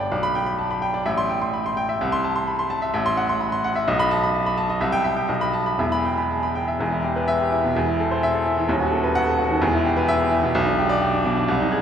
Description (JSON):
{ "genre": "classical, virtuoso piano study", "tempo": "127 BPM", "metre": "2/4", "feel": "rubato", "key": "E minor", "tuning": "A4 = 439 Hz", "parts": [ { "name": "clear baby grand piano", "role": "solo", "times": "0.0-11.8 s", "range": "D#1 to C6", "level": "-19 LUFS", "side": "equal", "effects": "none" } ], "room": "wet cathedral reverb, RT60 4.8 s", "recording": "recorded in a church or concert hall", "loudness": "-19 LUFS", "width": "side -8 dB against mid", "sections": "0.0-6.8 A section; 6.8-11.8 B section", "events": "none", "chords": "0.1 G/B; 1.1 Am7; 2.0 Am/C; 2.9 F#m7b5/A; 3.9 B7; 4.8 C; 5.3 B7; 5.8 Em; 7.8 Am/E; 8.7 B7/D#; 9.6 Em; 10.6 G/B", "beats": "| 0.11 0.58 | 1.06 1.53 | 2.00 2.47 | 2.94 3.41 | 3.87 4.34 | 4.81 5.29 | 5.79 6.30 | 6.80 7.28 | 7.75 8.22 | 8.69 9.15 | 9.62 10.09 | 10.55 11.01 | 11.49" }